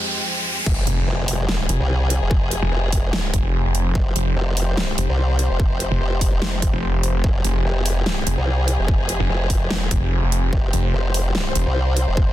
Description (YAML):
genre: heavy wobble dubstep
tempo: 146 BPM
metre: 4/4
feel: swing 53% on 16ths, half-time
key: F minor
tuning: A4 = 440 Hz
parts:
  - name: dark studio string section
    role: sustained chords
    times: 0.0-12.3 s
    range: F2 to C5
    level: -28 LUFS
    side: left 2 dB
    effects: sidechain pumping
  - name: riser and impact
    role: sound effects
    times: 0.0-2.3 s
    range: none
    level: -26 LUFS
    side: equal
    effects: none
  - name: formant-sweep wobble bass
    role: bass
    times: 0.7-12.3 s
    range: F1 to C2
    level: -21 LUFS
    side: equal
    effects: chorus, overdrive
  - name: dubstep drum kit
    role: drums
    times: 0.7-12.1 s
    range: crash cymbal, hi-hat, snare drum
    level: -26 LUFS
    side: equal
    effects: overdrive, high-pass filter on snare, high-pass filter on hats, high-pass filter on cymbals, high-pass filter on room
  - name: electronic kick drum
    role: drums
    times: 0.7-12.3 s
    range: none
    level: -20 LUFS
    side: equal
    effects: none
  - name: snarling distorted saw bass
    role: bass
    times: 0.9-11.6 s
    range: F1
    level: -20 LUFS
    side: equal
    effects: distortion, overdrive
room: little or no reverb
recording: dense, heavily limited modern master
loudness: -18 LUFS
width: side -14 dB against mid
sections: 0.7-12.3 A section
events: break 0.0-0.7; riser 0.0-0.7; drop 0.7-12.3; impact 0.7-2.3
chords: 0.0 Fmadd9